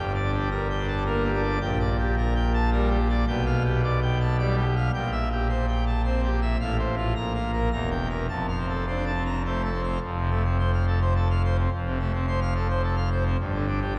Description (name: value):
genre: classical, organ toccata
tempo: 108 BPM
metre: 3/4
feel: straight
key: F major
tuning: A4 = 440 Hz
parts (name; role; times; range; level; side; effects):
- pipe organ, full organ; solo; 0.0-14.0 s; E1 to Bb5; -25 LUFS; equal; none
room: wet church reverb, RT60 3.3 s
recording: dark, warm production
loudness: -25 LUFS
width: mono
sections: 0.0-10.0 A section; 10.0-14.0 A section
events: none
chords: 0.0 Gm; 1.6 Gm/Bb; 3.3 G7/B; 4.9 C7/Bb; 6.6 F/A; 7.2 Bb5; 7.7 Edim; 8.3 F; 13.4 G5